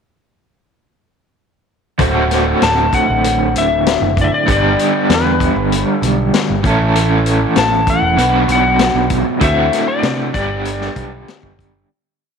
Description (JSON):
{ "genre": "psychedelic rock", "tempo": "97 BPM", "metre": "4/4", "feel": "straight", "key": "D mixolydian", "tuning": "A4 = 445 Hz", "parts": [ { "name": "crunchy overdriven guitar", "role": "riff", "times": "2.0-11.9 s", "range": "D2 to B4", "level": "-16 LUFS", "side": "right 2 dB", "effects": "tremolo" }, { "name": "picked electric bass", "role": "bass", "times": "2.0-11.8 s", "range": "D1 to C3", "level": "-19 LUFS", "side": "right 2 dB", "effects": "none" }, { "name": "vintage drum kit", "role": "drums", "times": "2.0-11.7 s", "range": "hi-hat, kick drum, snare drum", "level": "-19 LUFS", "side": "left 4 dB", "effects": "none" }, { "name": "electric slide guitar", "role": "melody", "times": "2.6-11.5 s", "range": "B4 to A5", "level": "-17 LUFS", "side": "left 4 dB", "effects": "slapback echo" } ], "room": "light reverb, studio ambience", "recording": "1960s-style stereo", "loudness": "-12 LUFS", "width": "side -6 dB against mid", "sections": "2.0-11.9 verse", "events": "fade-out 9.4-11.9", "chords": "2.0 D7; 4.5 G; 6.6 A; 8.2 Bm; 9.4 D7; 10.3 Gmaj7" }